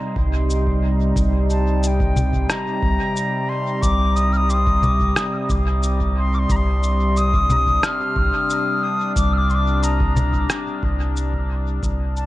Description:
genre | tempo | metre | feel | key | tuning
ambient dub | 90 BPM | 4/4 | straight | C minor | A4 = 441 Hz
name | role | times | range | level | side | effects
warm analog pad | sustained chords | 0.0-12.3 s | C3 to Eb4 | -24 LUFS | left 1 dB | chorus
soft dub sub bass | bass | 0.2-12.3 s | C2 | -19 LUFS | equal | none
electronic kick drum | drums | 0.2-12.0 s | none | -25 LUFS | equal | none
electronic shaker, congas and rim click | drums | 0.5-12.3 s | none | -26 LUFS | left 1 dB | dub echo
mellow wooden flute | melody | 1.5-12.2 s | G5 to F6 | -23 LUFS | left 1 dB | dub echo
room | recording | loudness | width
light reverb | nothing above 10.6 kHz | -17 LUFS | side -16 dB against mid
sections
0.0-12.3 A section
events
fade-out 10.1-12.3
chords
0.0 Cmadd9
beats
0.49 | 1.16 1.83 2.50 3.16 | 3.83 4.50 5.16 5.83 | 6.50 7.16 7.83 8.49 | 9.16 9.83 10.49 11.16 | 11.83

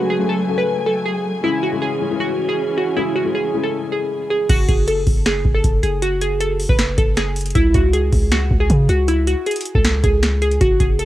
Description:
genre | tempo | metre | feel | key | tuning
hip hop, trap | 157 BPM | 4/4 | half-time | F# minor | A4 = 440 Hz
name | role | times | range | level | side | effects
glassy wavetable pluck | melody | 0.0-11.1 s | E4 to B4 | -20 LUFS | right 1 dB | chorus, low-pass filter, cassette tape
felt-muted upright piano | accompaniment | 0.0-4.5 s | C#3 to B4 | -24 LUFS | left 8 dB | low-pass filter
muted studio string section | sustained chords | 0.0-4.5 s | E3 to G#5 | -25 LUFS | equal | none
long sustained 808-style bass | bass | 4.5-11.1 s | F#1 to C#3 | -19 LUFS | equal | none
booming analog drum machine | drums | 4.5-11.1 s | crash cymbal, finger snaps, hi-hat, kick drum, snare drum | -18 LUFS | equal | none
room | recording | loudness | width
small room ambience | home recording on cassette | -15 LUFS | side -14 dB against mid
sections
0.0-4.5 A section; 4.5-11.1 B section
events
none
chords
0.0 F#madd9; 1.4 C#m; 4.5 F#m; 7.6 C#5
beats
0.29 0.67 1.05 | 1.44 1.82 2.20 2.58 | 2.97 3.35 3.73 4.11 | 4.50 4.88 5.26 5.64 | 6.02 6.41 6.79 7.17 | 7.55 7.93 8.32 8.70 | 9.08 9.46 9.85 10.23 | 10.61 10.99

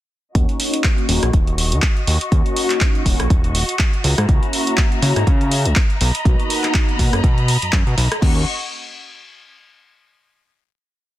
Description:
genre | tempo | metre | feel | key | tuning
filtered disco house | 122 BPM | 4/4 | swing 56% on 16ths | Eb minor | A4 = 440 Hz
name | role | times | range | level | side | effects
mellow synth brass | accompaniment | 0.3-8.4 s | Bb3 to Gb4 | -23 LUFS | left 1 dB | chorus, phaser, sidechain pumping, low-pass filter
fat analog bass | bass | 0.3-8.4 s | Eb1 to Db3 | -18 LUFS | equal | tube saturation, sidechain pumping, low-pass filter
rich studio string section | sustained chords | 0.4-8.4 s | Gb4 to Db6 | -27 LUFS | left 2 dB | sidechain pumping, low-pass filter
electronic kick drum | drums | 0.4-8.3 s | none | -17 LUFS | equal | none
punchy analog drum machine | drums | 0.4-8.3 s | crash cymbal, handclaps, hi-hat, rim click | -22 LUFS | equal | sidechain pumping on hats, sidechain pumping on cymbals
room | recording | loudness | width
little or no reverb | dense, heavily limited modern master | -15 LUFS | side -14 dB against mid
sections
0.4-8.2 groove; 8.2-10.2 final chord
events
filter sweep 0.4-8.2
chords
0.4 Ebm7; 4.0 Gb7/Db; 6.0 Bmaj7; 8.2 Ebm7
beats
| 0.35 0.84 1.33 1.83 | 2.32 2.81 3.30 3.79 | 4.29 4.78 5.27 5.76 | 6.25 6.75 7.24 7.73 | 8.22

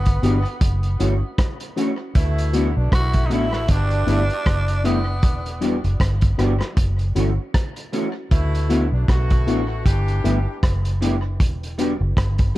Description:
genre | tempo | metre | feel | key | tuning
lovers rock reggae | 78 BPM | 4/4 | swing 57% on 16ths | D major | A4 = 440 Hz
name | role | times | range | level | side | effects
raspy tenor saxophone | melody | 0.0-5.6 s | B3 to F#4 | -28 LUFS | right 1 dB | tape echo
vintage muted fingered electric bass | bass | 0.0-12.5 s | E1 to D2 | -21 LUFS | equal | none
vintage drum kit | drums | 0.1-12.6 s | hi-hat, kick drum, rim click | -21 LUFS | equal | none
mellow FM electric piano | accompaniment | 0.2-12.6 s | G3 to G4 | -26 LUFS | left 4 dB | chorus
electric guitar at the edge of break-up | stabs | 0.2-12.6 s | E3 to G4 | -27 LUFS | right 2 dB | ensemble chorus
clear horn section | second line | 2.2-10.6 s | B2 to G4 | -29 LUFS | equal | none
room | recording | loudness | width
little or no reverb | dark, warm production | -18 LUFS | side -16 dB against mid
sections
0.0-12.6 A section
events
none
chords
0.0 Em7; 0.6 F#m7; 2.2 D69; 3.7 G6; 5.2 Em7; 6.8 F#m7; 8.3 D69; 9.9 G6; 11.4 Em7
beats
0.61 1.38 | 2.15 2.92 3.69 4.46 | 5.24 6.01 6.78 7.55 | 8.32 9.09 9.86 10.63 | 11.40 12.17

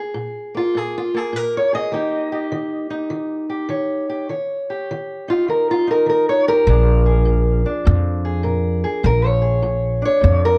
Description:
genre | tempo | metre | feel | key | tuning
acoustic country blues, solo or duo | 101 BPM | 4/4 | swing 66% on 8ths | unclear | A4 = 440 Hz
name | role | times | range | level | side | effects
fingerpicked steel-string acoustic guitar | melody | 0.0-10.6 s | Bb2 to Eb5 | -21 LUFS | equal | none
upright bass | bass | 6.7-10.6 s | Bb1 to F2 | -18 LUFS | equal | none
room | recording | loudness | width
moderate studio reverb, RT60 0.7 s | dark, warm production | -19 LUFS | mono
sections
0.0-10.6 A section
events
steel-string acoustic guitar solo 0.0-10.6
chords
0.0 Bb7(no3); 1.9 Eb7; 6.7 Bb7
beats
0.14 0.74 1.33 | 1.92 2.51 3.11 3.70 | 4.29 4.89 5.48 6.07 | 6.67 7.26 7.86 8.45 | 9.04 9.64 10.23

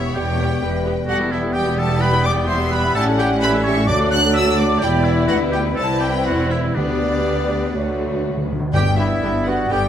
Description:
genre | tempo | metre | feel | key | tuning
quick classical-period movement for symphony orchestra | 127 BPM | 4/4 | straight | G major | A4 = 442 Hz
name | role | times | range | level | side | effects
rich chamber violin section | melody | 0.0-9.9 s | D5 to F#6 | -26 LUFS | left 2 dB | none
bright clarinet | second line | 0.0-9.9 s | A3 to E4 | -27 LUFS | left 2 dB | none
mellow hollow small flute group | second line | 0.0-9.9 s | D5 to F#6 | -28 LUFS | right 2 dB | none
rich studio violin section | second line | 0.0-9.8 s | G4 to G5 | -28 LUFS | left 2 dB | none
dark French horn section | sustained chords | 0.0-9.9 s | A3 to G4 | -26 LUFS | left 2 dB | none
rich studio cello section | bass | 0.0-9.9 s | C2 to A2 | -24 LUFS | equal | none
warm chamber double bass section | bass | 0.0-9.9 s | E1 to D2 | -24 LUFS | right 2 dB | none
clear oboe | second line | 0.1-9.8 s | D4 to F#5 | -26 LUFS | right 1 dB | none
clear bassoon | accompaniment | 0.2-9.9 s | F#3 to G3 | -27 LUFS | right 1 dB | none
rich chamber viola section | accompaniment | 0.2-9.8 s | D3 to A4 | -27 LUFS | left 1 dB | none
timpani | percussion | 6.8-9.4 s | G2 to D3 | -24 LUFS | left 1 dB | none
dark trumpet section | stabs | 8.7-9.9 s | E4 to G4 | -24 LUFS | equal | none
room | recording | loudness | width
moderate scoring stage reverb, RT60 1.9 s | close, detailed microphones | -16 LUFS | side -9 dB against mid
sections
0.0-8.7 A section; 8.7-9.9 B section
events
timpani fill 7.8-8.7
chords
0.0 Em; 3.0 A7; 3.9 D; 4.8 Em; 5.8 C; 6.8 G/D; 7.8 D; 8.7 G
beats
0.15 0.62 | 1.09 1.55 2.02 2.49 | 2.96 3.43 3.90 4.37 | 4.84 5.32 5.79 6.28 | 6.77 7.27 7.76 8.26 | 8.75 9.23 9.71

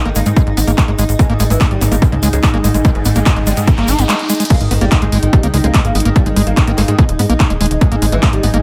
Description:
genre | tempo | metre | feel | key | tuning
psychedelic trance | 145 BPM | 4/4 | straight | unclear | A4 = 438 Hz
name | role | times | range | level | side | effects
oud | melody | 0.0-8.6 s | G#2 to A#3 | -24 LUFS | equal | phaser, sidechain pumping, digital delay
evolving wavetable pad | sustained chords | 0.0-8.6 s | D#4 | -28 LUFS | equal | none
airy breathy pad | texture | 0.0-8.6 s | D#4 to D#5 | -26 LUFS | equal | chorus, sidechain pumping
overdriven acid bass | riff | 0.1-8.6 s | G#3 to D#4 | -22 LUFS | equal | cassette tape, sidechain pumping, tape echo
plucky analog bass | bass | 0.1-8.6 s | D#1 to G#2 | -18 LUFS | equal | none
techno drum kit | drums | 0.1-8.6 s | crash cymbal, handclaps, hi-hat | -24 LUFS | equal | overdrive
egg shaker | percussion | 0.2-4.5 s | none | -28 LUFS | equal | none
electronic kick drum | drums | 0.4-8.3 s | none | -14 LUFS | equal | none
riser and sub drop | sound effects | 2.8-6.2 s | none | -30 LUFS | equal | none
room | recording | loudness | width
light reverb | none | -13 LUFS | mono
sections
0.0-4.5 A section; 4.5-8.6 B section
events
riser 2.8-4.5; band accent 4.1; drum fill 4.3; drop 4.5-8.6; impact 4.5-6.2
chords
0.0 G#5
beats
0.36 0.78 | 1.19 1.61 2.02 2.43 | 2.85 3.26 3.67 4.09 | 4.50 4.92 5.33 5.74 | 6.16 6.57 6.99 7.40 | 7.81 8.23

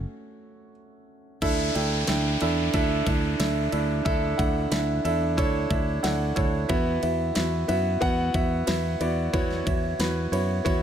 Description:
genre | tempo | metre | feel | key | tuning
piano-driven pop | 91 BPM | 4/4 | straight | unclear | A4 = 440 Hz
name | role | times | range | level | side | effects
warm concert grand piano | accompaniment | 0.0-10.8 s | D3 to G5 | -26 LUFS | right 1 dB | none
fingered electric bass | bass | 0.0-10.8 s | D2 to F#2 | -28 LUFS | equal | none
pop drum kit | drums | 1.4-10.8 s | crash cymbal, kick drum, ride cymbal, snare drum | -30 LUFS | equal | none
downlifter | sound effects | 1.4-6.7 s | none | -34 LUFS | left 1 dB | none
room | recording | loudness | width
little or no reverb | none | -22 LUFS | side -9 dB against mid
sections
0.0-1.4 A section; 1.4-10.8 B section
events
grand piano solo 0.0-1.4; break 0.1-1.4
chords
0.0 F#m; 1.4 Dsus2; 6.7 Esus2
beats
0.10 0.76 | 1.42 2.08 2.74 3.40 | 4.06 4.72 5.38 6.04 | 6.70 7.36 8.02 8.68 | 9.34 10.00 10.66

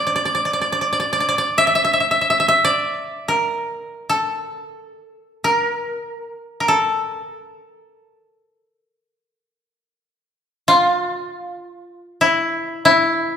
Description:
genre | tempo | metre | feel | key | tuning
japanese traditional, Japanese chamber music | free time | none | none | D hirajoshi | A4 = 441 Hz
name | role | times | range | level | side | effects
koto | solo | 0.0-13.4 s | E4 to E5 | -17 LUFS | equal | none
room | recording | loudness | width
wet recital hall reverb, RT60 1.6 s | recorded in a church or concert hall | -16 LUFS | side -8 dB against mid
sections
0.0-13.4 A section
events
slowing down 8.6-13.4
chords
none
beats
free time

